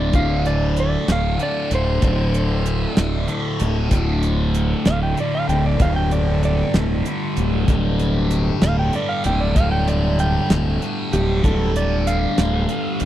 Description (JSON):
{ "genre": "psychedelic rock", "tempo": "64 BPM (dotted quarters)", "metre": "6/8", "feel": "straight", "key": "unclear", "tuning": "A4 = 440 Hz", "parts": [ { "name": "electric slide guitar", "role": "melody", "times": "0.0-13.1 s", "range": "G4 to G5", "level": "-25 LUFS", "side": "right 2 dB", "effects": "tape echo" }, { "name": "thick fuzz guitar", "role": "riff", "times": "0.0-13.1 s", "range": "D2 to G3", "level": "-23 LUFS", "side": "left 1 dB", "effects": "distortion, phaser" }, { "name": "fuzz fingered electric bass", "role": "bass", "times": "0.0-13.1 s", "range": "D1", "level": "-20 LUFS", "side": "equal", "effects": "overdrive" }, { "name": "tanpura", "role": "drone", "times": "0.0-13.1 s", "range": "D2 to D3", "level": "-32 LUFS", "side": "right 1 dB", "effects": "none" }, { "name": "damped 70s drum kit", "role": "drums", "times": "0.1-13.1 s", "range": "hi-hat, kick drum, snare drum", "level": "-19 LUFS", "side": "equal", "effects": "none" } ], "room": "little or no reverb", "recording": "dry, close 1970s-style studio recording", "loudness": "-17 LUFS", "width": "side -12 dB against mid", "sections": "0.0-13.1 A section", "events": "electric slide guitar solo 0.0-13.1", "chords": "0.0 D5; 5.8 G5/D" }